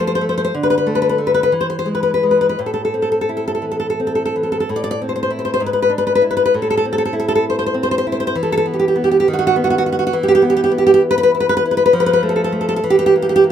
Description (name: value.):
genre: romantic piece for solo classical guitar.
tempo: 56-69 BPM (dotted quarters).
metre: 6/8.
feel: rubato.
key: A minor.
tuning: A4 = 440 Hz.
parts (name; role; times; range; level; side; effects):
nylon-string guitar; solo; 0.0-13.5 s; G#2 to D5; -14 LUFS; equal; none.
room: light reverb.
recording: minimal, uncompressed stereo recording.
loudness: -14 LUFS.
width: side -9 dB against mid.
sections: 0.0-4.7 A section; 4.7-13.5 B section.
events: none.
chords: 0.0 F; 0.6 Bm7/D; 1.5 E; 2.6 Am; 5.6 E7/G#; 6.5 Am; 8.4 E5; 9.3 B/D#; 10.1 E5; 11.9 F; 12.8 Edim.